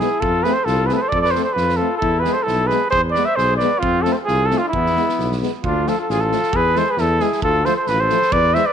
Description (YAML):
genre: balkan folk, Balkan brass band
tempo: 133 BPM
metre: 2/4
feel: swing 55% on 16ths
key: E phrygian dominant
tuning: A4 = 440 Hz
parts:
  - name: mellow cornet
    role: melody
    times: 0.0-8.7 s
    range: E4 to E5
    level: -18 LUFS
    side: right 2 dB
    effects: none
  - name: clear flugelhorn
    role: second line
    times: 0.0-8.7 s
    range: B3 to C5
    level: -24 LUFS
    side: left 12 dB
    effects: none
  - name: mellow French horn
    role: accompaniment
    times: 0.0-8.6 s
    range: G#3 to C4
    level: -27 LUFS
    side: left 14 dB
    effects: none
  - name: mellow euphonium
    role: accompaniment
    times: 0.0-8.6 s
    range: E3 to A3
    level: -29 LUFS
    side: right 12 dB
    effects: none
  - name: mellow tuba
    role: bass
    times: 0.0-8.6 s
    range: A1 to F2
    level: -22 LUFS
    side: equal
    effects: none
  - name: loose indie drum kit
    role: percussion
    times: 0.0-8.6 s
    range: kick drum, snare drum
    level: -30 LUFS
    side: right 2 dB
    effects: none
room: light reverb, small room ambience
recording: 1960s-style stereo with parts hard left and right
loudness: -16 LUFS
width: side -8 dB against mid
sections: 0.0-5.6 A section; 5.6-8.7 B section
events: none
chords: 0.2 F; 2.0 E; 3.8 F; 4.7 E; 5.6 Dm; 6.5 E; 7.4 Dm